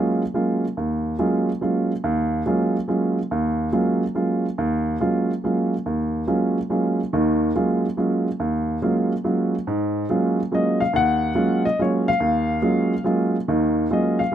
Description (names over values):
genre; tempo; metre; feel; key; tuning
jazz; 142 BPM; 3/4; swing 66% on 8ths; unclear; A4 = 439 Hz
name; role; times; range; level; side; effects
warm upright piano; solo; 0.0-14.3 s; D#2 to F#5; -19 LUFS; right 1 dB; none
room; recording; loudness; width
light reverb; close, detailed microphones; -19 LUFS; side -10 dB against mid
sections
0.0-9.7 A section; 9.7-14.3 B section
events
none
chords
0.0 G#13sus4